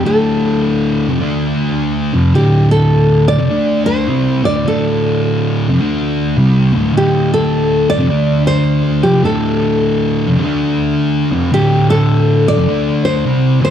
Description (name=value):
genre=metal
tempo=104 BPM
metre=4/4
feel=swing 63% on 8ths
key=D minor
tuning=A4 = 440 Hz
part: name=nylon-string guitar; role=melody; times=0.0-13.7 s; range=G4 to D5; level=-16 LUFS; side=left 1 dB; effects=slapback echo
part: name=thick fuzz guitar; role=riff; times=0.0-13.7 s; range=D2 to D4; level=-12 LUFS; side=equal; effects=distortion
room=light reverb, small room ambience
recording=dark, warm production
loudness=-11 LUFS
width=side -9 dB against mid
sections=0.0-13.7 A section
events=none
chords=0.0 Dm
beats=| 0.06 0.64 1.21 1.78 | 2.35 2.93 3.50 4.08 | 4.65 5.22 5.80 6.38 | 6.95 7.52 8.10 8.67 | 9.25 9.82 10.40 10.97 | 11.55 12.12 12.70 13.27